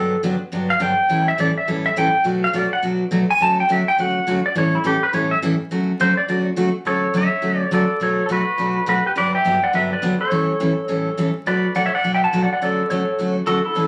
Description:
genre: country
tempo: 208 BPM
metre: 4/4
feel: swing 62% on 8ths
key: D major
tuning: A4 = 436 Hz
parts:
  - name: clean lap steel guitar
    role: melody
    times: 0.0-13.9 s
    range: E4 to A5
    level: -21 LUFS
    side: equal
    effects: none
  - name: picked steel-string acoustic guitar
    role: accompaniment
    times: 0.0-13.9 s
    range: G2 to A4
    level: -23 LUFS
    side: equal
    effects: none
room: wet studio reverb, RT60 0.6 s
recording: vinyl crackle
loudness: -19 LUFS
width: mono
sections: 0.0-6.9 A section; 6.9-13.9 B section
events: electric slide guitar solo 0.0-6.9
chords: 0.0 Gmaj7; 1.1 A7; 2.3 Bm7; 3.4 Dmaj7; 4.6 A7; 5.7 Dmaj7; 8.0 Bm7; 9.2 Gmaj7; 10.3 A7; 11.5 Bm7; 12.6 Dmaj7

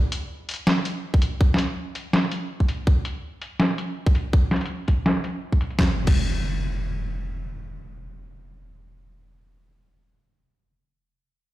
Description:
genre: half-time drum and bass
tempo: 164 BPM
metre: 4/4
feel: swing 53% on 16ths, half-time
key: none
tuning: none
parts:
  - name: boom bap sampler-style drum kit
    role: drums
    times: 0.1-6.2 s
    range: crash cymbal, hi-hat, snare drum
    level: -24 LUFS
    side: equal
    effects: low-pass filter on hats, small room ambience, low-pass filter on snare, low-pass filter on cymbals
  - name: electronic kick drum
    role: drums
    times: 1.1-6.2 s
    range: none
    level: -19 LUFS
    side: equal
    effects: small room ambience
  - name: impact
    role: sound effects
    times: 5.8-9.7 s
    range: none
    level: -28 LUFS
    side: equal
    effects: none
room: light reverb, digital ambience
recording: played on a big sound system in a bare room, stone room reverb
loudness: -21 LUFS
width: side -16 dB against mid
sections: 0.0-5.8 A section; 5.8-8.7 B section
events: filter sweep on drum 0.0-5.8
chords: none

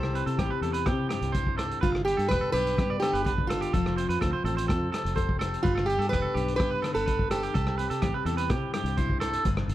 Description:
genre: highlife guitar band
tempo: 126 BPM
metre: 4/4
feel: straight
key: unclear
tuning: A4 = 444 Hz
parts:
  - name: fingerpicked plugged-in steel-string acoustic guitar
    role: melody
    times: 0.0-9.2 s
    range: F4 to C5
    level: -29 LUFS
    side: right 1 dB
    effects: none
  - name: nylon-string guitar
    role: accompaniment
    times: 0.0-9.7 s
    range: G2 to B4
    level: -34 LUFS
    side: left 7 dB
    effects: none
  - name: electric guitar at the edge of break-up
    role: arpeggios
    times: 0.0-9.4 s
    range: G4 to D5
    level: -32 LUFS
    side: right 5 dB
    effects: tape echo
  - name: fingered electric bass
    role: bass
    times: 0.0-9.7 s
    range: E1 to C3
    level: -31 LUFS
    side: equal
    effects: none
  - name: vintage drum kit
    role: drums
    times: 0.0-9.7 s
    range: hi-hat, kick drum, rim click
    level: -31 LUFS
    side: equal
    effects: none
room: light reverb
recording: none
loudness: -25 LUFS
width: side -14 dB against mid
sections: 0.0-9.5 A section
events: none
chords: 0.0 C; 1.8 G; 3.7 F; 5.6 G; 7.5 C

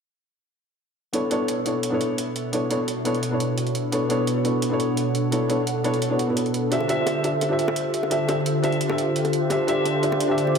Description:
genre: liquid drum and bass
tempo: 172 BPM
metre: 4/4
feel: straight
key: B minor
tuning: A4 = 440 Hz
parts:
  - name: felt-muted upright piano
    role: accompaniment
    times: 1.1-10.6 s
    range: B3 to E5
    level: -23 LUFS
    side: equal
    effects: low-pass filter, tape echo
  - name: warm analog pad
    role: sustained chords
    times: 1.1-10.6 s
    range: B2 to F#5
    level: -25 LUFS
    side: equal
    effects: chorus
  - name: electronic hi-hat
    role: drums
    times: 1.1-10.6 s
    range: none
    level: -33 LUFS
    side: right 3 dB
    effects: small room ambience
  - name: bongos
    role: percussion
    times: 6.8-10.5 s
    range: none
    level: -33 LUFS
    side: left 1 dB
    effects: none
room: wet lush hall reverb, RT60 2.0 s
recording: dreamy mix soaked in reverb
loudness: -21 LUFS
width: side -6 dB against mid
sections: 1.1-10.6 A section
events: filter sweep on felt piano 1.1-10.6; filter sweep on analog synth pad 1.1-10.6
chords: 1.1 Bm11; 6.7 Dm11

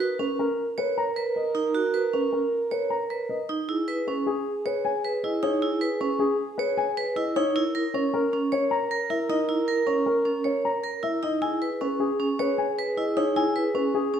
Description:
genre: classical, minimalist pattern music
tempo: 155 BPM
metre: 5/4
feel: straight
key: E lydian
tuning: A4 = 440 Hz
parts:
  - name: mellow French horn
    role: second line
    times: 0.0-14.2 s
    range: G#4 to A#4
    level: -29 LUFS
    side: right 4 dB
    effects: none
  - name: vibraphone with medium hard mallets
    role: arpeggios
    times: 0.0-14.2 s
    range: C#4 to C#5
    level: -27 LUFS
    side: right 3 dB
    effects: none
  - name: dark baby grand piano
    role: melody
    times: 0.2-14.2 s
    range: G#4 to A#5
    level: -28 LUFS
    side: left 6 dB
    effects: none
room: moderate recital hall reverb, RT60 1.3 s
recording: none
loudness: -23 LUFS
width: side -8 dB against mid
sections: 0.0-14.2 A section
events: none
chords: 0.0 Bmaj7; 3.7 Emaj7; 7.6 C#m6; 11.4 E

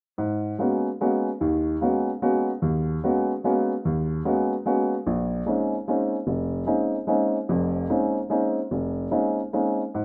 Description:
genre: jazz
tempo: 148 BPM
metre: 3/4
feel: swing 64% on 8ths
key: unclear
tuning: A4 = 445 Hz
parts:
  - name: warm baby grand piano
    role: solo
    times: 0.2-10.0 s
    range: E#1 to F#4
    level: -25 LUFS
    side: equal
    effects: none
room: light reverb, studio ambience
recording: rough home demo mix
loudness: -25 LUFS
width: mono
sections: 0.2-10.0 A section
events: none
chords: 0.2 G#m11; 5.1 A#m11

